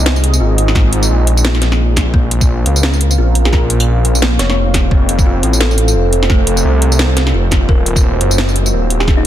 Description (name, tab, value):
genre	half-time drum and bass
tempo	173 BPM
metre	4/4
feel	swing 58% on 16ths, half-time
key	unclear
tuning	A4 = 442 Hz
part	dark analog pad	sustained chords	0.0-9.3 s	Bb3 to F5	-22 LUFS	equal	chorus, sidechain pumping
part	kalimba	arpeggios	0.0-9.2 s	Ab3 to Bb4	-22 LUFS	equal	ping-pong delay
part	dark detuned saw bass	bass	0.0-9.3 s	Eb1 to Db2	-13 LUFS	equal	none
part	drum and bass drum kit	drums	0.1-9.2 s	hi-hat, snare drum, tambourine	-17 LUFS	equal	soft clipping on snare
part	electronic kick drum	drums	0.8-9.2 s	none	-12 LUFS	equal	none
part	pulsing gated texture	texture	2.1-9.3 s	C4 to C5	-24 LUFS	right 4 dB	chorus, built-in reverb
part	thumb-piano-like synth pluck	melody	3.5-4.5, 9.0-9.3 s	Eb4 to Db5	-22 LUFS	left 1 dB	chorus, digital delay
room	light reverb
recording	dense, heavily limited modern master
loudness	-10 LUFS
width	side -12 dB against mid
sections	0.0-9.3 A section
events	none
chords	0.0 Ab; 2.1 Bbm; 4.9 F; 7.7 Ebmadd9